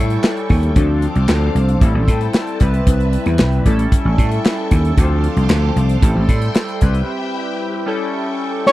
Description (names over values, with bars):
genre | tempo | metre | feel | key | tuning
early-eighties boogie funk | 114 BPM | 4/4 | straight | unclear | A4 = 440 Hz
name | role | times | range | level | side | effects
chorused polysynth | accompaniment | 0.0-8.7 s | E3 to B4 | -21 LUFS | left 1 dB | none
phased string machine | sustained chords | 0.0-8.7 s | G4 to D6 | -29 LUFS | equal | ensemble chorus, phaser
vintage slap bass | bass | 0.0-7.0 s | A1 to A2 | -15 LUFS | equal | none
modern studio drum kit | drums | 0.1-8.7 s | handclaps, hi-hat, kick drum, snare drum | -16 LUFS | equal | none
fat analog lead | melody | 8.7 s | C#5 | -7 LUFS | equal | chorus
room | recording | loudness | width
little or no reverb | dry, close 1970s-style studio recording | -14 LUFS | side -16 dB against mid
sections
0.0-8.7 A section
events
break 7.1-8.7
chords
0.0 A7; 0.8 Dm7; 1.8 Am7; 2.6 Cmaj7; 3.7 A7; 5.0 Dm7; 6.0 Am7; 6.8 Cmaj7; 7.9 A7